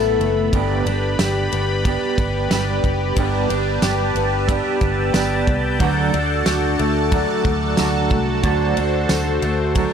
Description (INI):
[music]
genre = dream pop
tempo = 91 BPM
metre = 4/4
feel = straight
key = G major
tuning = A4 = 440 Hz
[part]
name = mellow electric guitar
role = accompaniment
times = 0.0-9.9 s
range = G2 to A4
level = -24 LUFS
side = right 6 dB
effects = tremolo, wide subtle chorus
[part]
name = phased analog pad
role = sustained chords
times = 0.0-9.9 s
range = F#4 to B5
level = -23 LUFS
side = right 1 dB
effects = phaser, chorus
[part]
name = picked twelve-string acoustic guitar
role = arpeggios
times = 0.0-9.9 s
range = G2 to A4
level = -24 LUFS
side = left 7 dB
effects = analog chorus, tape echo
[part]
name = vintage muted fingered electric bass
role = bass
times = 0.0-9.9 s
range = F#1 to D2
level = -23 LUFS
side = equal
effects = none
[part]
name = loose indie drum kit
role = drums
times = 0.2-9.9 s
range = kick drum, ride cymbal, snare drum, tambourine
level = -24 LUFS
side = right 1 dB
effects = none
[part]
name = backwards swelling texture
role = texture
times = 3.7-8.0 s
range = D6 to A6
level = -31 LUFS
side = equal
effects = built-in reverb, tape echo
[sound]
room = studio reverb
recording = dry, gritty hardware recording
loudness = -17 LUFS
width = side -7 dB against mid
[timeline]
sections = 0.0-9.9 A section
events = none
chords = 0.0 Asus2; 0.5 G; 5.8 D